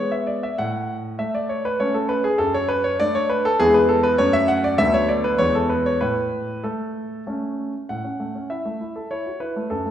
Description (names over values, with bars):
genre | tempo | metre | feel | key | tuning
classical-period piano sonatina | 99 BPM | 3/4 | straight | A major | A4 = 442 Hz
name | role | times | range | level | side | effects
warm grand piano | solo | 0.0-9.9 s | D2 to F#5 | -19 LUFS | equal | none
room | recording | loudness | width
wet recital hall reverb, RT60 1.4 s | heard from further back in the room | -19 LUFS | side -10 dB against mid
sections
0.0-7.9 A section; 7.9-9.9 A section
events
none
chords
0.0 E; 0.6 A; 2.4 D/F#; 3.6 E; 4.2 F#m; 4.8 Bm7/D; 5.4 E; 6.0 A